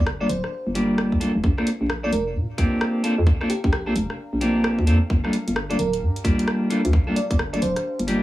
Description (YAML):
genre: UK garage, two-step garage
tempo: 131 BPM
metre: 4/4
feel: swing 63% on 16ths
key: G minor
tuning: A4 = 436 Hz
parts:
  - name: bell-like FM electric piano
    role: melody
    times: 0.0-8.0 s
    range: G4 to D5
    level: -28 LUFS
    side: right 1 dB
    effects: chorus, tremolo, digital delay
  - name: hollow knocking FM bass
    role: bass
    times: 0.0-8.2 s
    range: D1 to Bb2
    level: -23 LUFS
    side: equal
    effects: none
  - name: warbly tape-like pad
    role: texture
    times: 0.5-8.2 s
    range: D4 to F5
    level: -40 LUFS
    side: left 1 dB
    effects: none
  - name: garage drum kit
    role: drums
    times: 0.1-8.2 s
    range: hi-hat, rim click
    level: -29 LUFS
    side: equal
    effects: none
  - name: clean electric guitar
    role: stabs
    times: 0.2-8.2 s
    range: G3 to A4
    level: -23 LUFS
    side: equal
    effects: low-pass filter, digital delay
  - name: electronic kick drum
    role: drums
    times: 1.1-7.4 s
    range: none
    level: -21 LUFS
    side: equal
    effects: none
room: light reverb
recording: vinyl crackle, small room ambience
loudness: -20 LUFS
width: side -16 dB against mid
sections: 0.0-8.2 A section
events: none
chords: 0.0 Gm7; 1.4 Bbmaj7; 5.1 Gm7